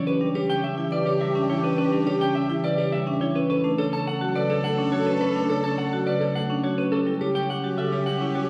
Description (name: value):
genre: classical, minimalist pattern music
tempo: 105 BPM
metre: 3/4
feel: straight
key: unclear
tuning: A4 = 442 Hz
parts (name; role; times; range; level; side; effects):
- clean electric guitar; melody; 0.0-8.5 s; G4 to A5; -30 LUFS; equal; none
- vibraphone with hard mallets; arpeggios; 0.0-8.5 s; C#4 to C#5; -32 LUFS; equal; none
- dark clarinet; second line; 0.1-8.5 s; G4 to A4; -34 LUFS; equal; none
- marimba with medium mallets; accompaniment; 0.1-8.5 s; C#3 to C#4; -28 LUFS; equal; none
- rich studio violin section; sustained chords; 0.1-8.5 s; C#4 to A4; -38 LUFS; equal; none
room: wet scoring stage reverb, RT60 1.6 s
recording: heard from further back in the room, vinyl crackle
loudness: -24 LUFS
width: mono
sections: 0.0-8.5 A section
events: none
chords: 0.1 Em7; 3.5 Bm7 (rootless); 6.9 A7 (rootless)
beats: | 0.07 0.64 1.21 | 1.78 2.35 2.92 | 3.50 4.07 4.64 | 5.21 5.78 6.35 | 6.92 7.50 8.07